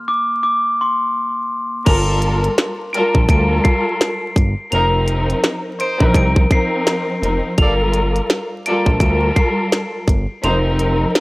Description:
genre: hip hop, boom-bap hip-hop.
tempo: 84 BPM.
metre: 4/4.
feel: swing 60% on 16ths.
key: G minor.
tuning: A4 = 442 Hz.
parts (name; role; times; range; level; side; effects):
glockenspiel with hard plastic mallets; melody; 0.0-11.2 s; C6 to F7; -21 LUFS; equal; high-pass filter, low-pass filter, analog delay.
dark analog pad; sustained chords; 0.0-1.8 s; Bb3; -36 LUFS; right 1 dB; wide subtle chorus, high-pass filter, low-pass filter.
dark studio string section; accompaniment; 1.9-11.2 s; F3 to Bb4; -19 LUFS; left 1 dB; cassette tape, high-pass filter, low-pass filter.
clear trumpet section; stabs; 1.9-10.6 s; Bb3 to D5; -26 LUFS; equal; high-pass filter, low-pass filter, analog delay.
smooth synth bass; bass; 1.9-11.1 s; F1 to D2; -18 LUFS; equal; none.
glitchy drum kit; drums; 1.9-11.2 s; crash cymbal, hi-hat, kick drum, snare drum; -16 LUFS; equal; none.
room: small room ambience.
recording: dry, gritty hardware recording, vinyl crackle.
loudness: -14 LUFS.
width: side -21 dB against mid.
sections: 0.0-1.9 A section; 1.9-11.2 B section.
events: stop 0.0-1.9.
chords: 0.0 N.C.; 1.9 Gm9; 4.7 F7sus4; 7.6 Gm9; 10.4 F7sus4.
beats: 0.44 1.15 | 1.86 2.58 3.29 4.01 | 4.72 5.44 6.15 6.87 | 7.58 8.29 9.01 9.72 | 10.44 11.15.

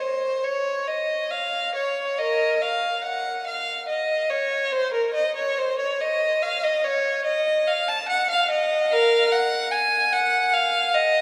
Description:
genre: classical, baroque-style suite movement for unaccompanied violin.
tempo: 68-74 BPM.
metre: 4/4.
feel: rubato.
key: unclear.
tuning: A4 = 439 Hz.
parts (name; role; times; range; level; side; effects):
rich violin; solo; 0.0-11.2 s; Bb4 to A5; -23 LUFS; equal; none.
room: wet cathedral reverb, RT60 4.8 s.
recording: recorded in a church or concert hall.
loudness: -23 LUFS.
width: mono.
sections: 0.0-11.2 A section.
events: none.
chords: none.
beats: 0.43 1.30 | 2.18 3.04 3.88 4.72 | 5.57 6.42 7.26 8.09 | 8.90 9.72 10.53.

